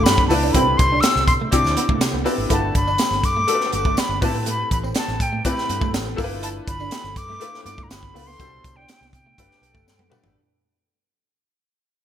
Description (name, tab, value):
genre	polished 1980s jazz-funk pop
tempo	122 BPM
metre	4/4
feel	straight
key	G major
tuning	A4 = 440 Hz
part	breathy concert flute	melody	0.0-10.1 s	G5 to E6	-22 LUFS	left 1 dB	none
part	clear baby grand piano	accompaniment	0.0-10.4 s	B2 to C5	-25 LUFS	left 3 dB	analog chorus
part	electric guitar at the edge of break-up	riff	0.0-10.2 s	A3 to E4	-30 LUFS	right 6 dB	ensemble chorus
part	vintage muted fingered electric bass	bass	0.1-10.3 s	G1 to C3	-26 LUFS	equal	none
part	crisp fusion drum kit	drums	0.1-10.3 s	hi-hat, kick drum, snare drum, toms	-22 LUFS	right 1 dB	gated reverb
part	tambourine	percussion	0.1-10.4 s	none	-38 LUFS	left 6 dB	none
room	moderate plate reverb, RT60 1.7 s, studio reverb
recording	bright 1980s-style digital production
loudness	-18 LUFS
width	side -10 dB against mid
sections	0.0-10.4 A section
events	fade-out 0.0-10.4; drum fill 9.9-10.4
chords	0.0 G13; 0.5 Cmaj9; 2.5 Gmaj9; 4.2 Am9; 6.2 G13; 8.4 Cmaj9; 9.4 Gmaj9